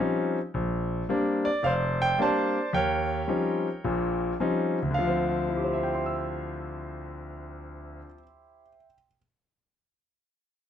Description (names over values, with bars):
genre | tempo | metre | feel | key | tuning
solo jazz | 109 BPM | 4/4 | swing 67% on 8ths | D minor | A4 = 440 Hz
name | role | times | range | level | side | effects
clear concert grand piano | solo | 0.0-9.2 s | F1 to E6 | -26 LUFS | equal | none
room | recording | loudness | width
moderate club reverb, RT60 0.5 s | none | -25 LUFS | side -9 dB against mid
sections
0.0-4.9 A section; 4.9-9.3 B section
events
none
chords
0.0 Eb13; 0.5 Bb69; 2.7 Eb13; 4.9 Dm7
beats
| 0.53 1.08 1.63 2.18 | 2.73 3.28 3.83 4.38 | 4.93 5.47 6.02 6.57 | 7.12 7.67 8.22 8.76